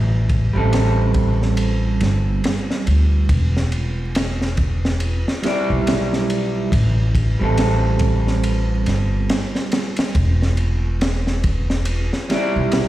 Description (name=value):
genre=trip hop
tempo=70 BPM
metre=4/4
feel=swing 59% on 16ths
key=E minor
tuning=A4 = 440 Hz
part: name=upright bass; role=bass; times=0.0-12.9 s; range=E1 to D2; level=-18 LUFS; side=equal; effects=none
part: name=crunchy breakbeat drum kit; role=drums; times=0.3-12.9 s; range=kick drum, ride cymbal, snare drum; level=-23 LUFS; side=equal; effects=none
part: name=electric guitar at the edge of break-up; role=accompaniment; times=0.5-12.9 s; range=G3 to D5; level=-22 LUFS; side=right 3 dB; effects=harmonic tremolo, tape echo
room=small room ambience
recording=played on a big sound system in a bare room, stone room reverb, vinyl crackle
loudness=-16 LUFS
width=side -15 dB against mid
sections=0.0-12.9 A section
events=none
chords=0.0 Am7; 3.3 Em7; 6.7 Am7; 10.2 Em7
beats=0.73 1.58 2.44 | 3.30 4.16 5.01 5.87 | 6.73 7.58 8.44 9.30 | 10.15 11.01 11.87 12.73